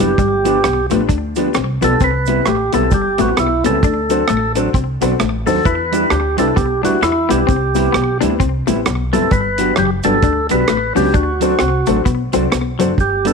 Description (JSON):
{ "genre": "ska", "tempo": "131 BPM", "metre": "4/4", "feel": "swing 60% on 8ths", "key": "G major", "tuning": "A4 = 442 Hz", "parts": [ { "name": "percussive tonewheel organ", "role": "melody", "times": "0.0-13.3 s", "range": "E4 to B4", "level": "-18 LUFS", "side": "right 2 dB", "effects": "slow rotary speaker, slapback echo" }, { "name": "hollow-body jazz guitar", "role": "accompaniment", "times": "0.0-13.3 s", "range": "F3 to E4", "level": "-22 LUFS", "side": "right 13 dB", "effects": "slapback echo" }, { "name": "semi-hollow electric guitar", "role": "riff", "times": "0.0-12.9 s", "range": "F#3 to E4", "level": "-22 LUFS", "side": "left 13 dB", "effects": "slapback echo" }, { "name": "clear upright piano", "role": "stabs", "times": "0.0-13.3 s", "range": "B3 to C5", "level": "-21 LUFS", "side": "left 14 dB", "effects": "none" }, { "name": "upright bass", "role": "bass", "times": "0.0-13.3 s", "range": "F#1 to E2", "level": "-21 LUFS", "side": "equal", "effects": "none" }, { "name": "deep reggae drum kit", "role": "drums", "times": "0.0-13.3 s", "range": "hi-hat, kick drum, rim click", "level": "-19 LUFS", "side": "right 3 dB", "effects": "slapback echo" }, { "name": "cabasa", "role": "percussion", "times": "0.2-13.3 s", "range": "none", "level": "-35 LUFS", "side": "right 15 dB", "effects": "none" } ], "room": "light reverb, small room ambience", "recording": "1960s-style stereo with parts hard left and right", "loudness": "-13 LUFS", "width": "side -5 dB against mid", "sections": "0.0-13.0 A section", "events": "none", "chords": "0.2 G7; 2.0 Cmaj7; 3.8 D7; 5.7 Em7; 7.5 Cmaj7; 9.3 Gmaj7; 11.1 D7" }